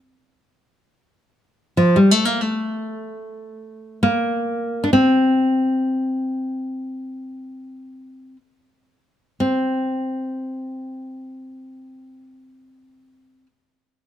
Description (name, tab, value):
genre	caucasian folk, Caucasian lament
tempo	free time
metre	none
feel	none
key	unclear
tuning	A4 = 440 Hz
part	nylon-string guitar	solo	1.8-13.5 s	F3 to D4	-19 LUFS	left 1 dB	none
room	light reverb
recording	close, detailed microphones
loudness	-18 LUFS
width	side -11 dB against mid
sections	0.8-9.4 A section; 9.4-13.8 B section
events	slowing down 0.8-9.4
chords	none